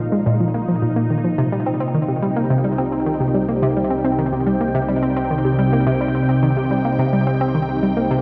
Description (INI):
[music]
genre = ambient, sequencer-driven space music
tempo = 107 BPM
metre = 4/4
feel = straight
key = C minor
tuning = A4 = 440 Hz
[part]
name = phased analog pad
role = sustained chords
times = 0.0-8.2 s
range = Bb2 to G5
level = -22 LUFS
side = equal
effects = phaser, chorus
[part]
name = analog pluck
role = riff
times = 0.0-8.2 s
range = Bb2 to C4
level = -22 LUFS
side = equal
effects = chorus, delay
[part]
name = analog drone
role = bass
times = 0.1-8.2 s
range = Bb1 to C2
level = -37 LUFS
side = equal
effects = chorus, tube saturation
[sound]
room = wet huge ambient reverb, RT60 8.7 s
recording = worn, warbling old tape, cassette tape, warbly pitch drift, faint mains hum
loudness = -19 LUFS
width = mono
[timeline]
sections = 0.0-8.2 A section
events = filter sweep on synth arpeggio sound 0.0-8.2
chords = 0.0 Bbsus4; 1.4 Cm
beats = 0.26 0.82 | 1.38 1.94 2.50 3.06 | 3.62 4.18 4.75 5.31 | 5.87 6.43 6.99 7.55 | 8.11